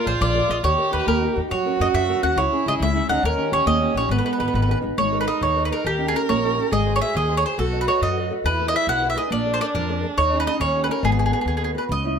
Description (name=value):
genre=italian folk, Italian serenade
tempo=138 BPM (dotted quarters)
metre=6/8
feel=straight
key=G# minor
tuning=A4 = 439 Hz
part: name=mandolin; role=melody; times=0.0-12.2 s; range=G4 to F#5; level=-22 LUFS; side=equal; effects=plate reverb
part: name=dark violin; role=second line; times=0.0-11.8 s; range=B3 to A#4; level=-26 LUFS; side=right 5 dB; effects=none
part: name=nylon-string guitar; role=accompaniment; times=0.0-12.2 s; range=B2 to D#5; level=-26 LUFS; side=left 1 dB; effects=none
part: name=upright bass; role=bass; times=0.1-12.2 s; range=G#1 to F#2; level=-25 LUFS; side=left 1 dB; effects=none
room=moderate small room reverb, RT60 0.5 s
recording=none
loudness=-19 LUFS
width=side -7 dB against mid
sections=0.0-5.0 A section; 5.0-11.9 B section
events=none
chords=0.0 A#7; 0.6 D#; 1.5 F#; 2.4 C#m; 3.2 D#7; 4.1 G#m; 5.0 G#madd9; 5.8 D#7; 6.7 G#7; 7.6 B7; 8.4 E; 9.3 A#7; 10.2 D#7sus4; 10.6 D#7; 11.0 G#m7